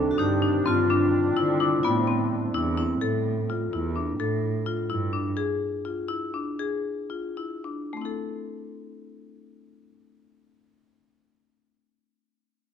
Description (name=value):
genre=contemporary instrumental, chamber music in an uneven meter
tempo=209-255 BPM (eighths)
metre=5/8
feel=straight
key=A minor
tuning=A4 = 440 Hz
part: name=vibraphone with medium hard mallets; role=second line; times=0.0-3.0 s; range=C4 to A4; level=-26 LUFS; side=left 1 dB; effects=none
part: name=deep dark ambient pad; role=sustained chords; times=0.0-3.0 s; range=Eb3 to D4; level=-31 LUFS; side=right 4 dB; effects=chorus, built-in reverb
part: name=marimba with medium hard mallets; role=arpeggios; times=0.0-11.6 s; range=A3 to A4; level=-28 LUFS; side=left 4 dB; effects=none
part: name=muted cello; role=bass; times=0.0-5.3 s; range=E2 to D3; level=-29 LUFS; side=right 4 dB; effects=none
part: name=worn celesta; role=texture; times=1.6-2.0 s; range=D6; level=-31 LUFS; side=left 7 dB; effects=none
room=light reverb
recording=dark, warm production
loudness=-24 LUFS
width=side -8 dB against mid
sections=0.0-3.0 A section; 3.0-7.9 B section; 7.9-10.8 C section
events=slowing down 5.4-7.9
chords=0.0 Cmadd9; 0.7 Gsus4; 1.8 Am; 3.0 A5; 5.4 Fm; 7.9 Am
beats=0.18 0.42 | 0.66 0.89 1.13 1.36 1.60 | 1.83 2.07 2.31 2.54 2.78 | 3.01 3.25 3.49 3.72 3.96 | 4.20 4.43 4.67 4.91 5.14 | 5.38 5.62 5.86 6.10 6.35 | 6.60 6.85 7.11 7.38 7.65 | 7.93 8.22 8.51 8.79 9.08 | 9.37 9.66 9.94 10.23 10.52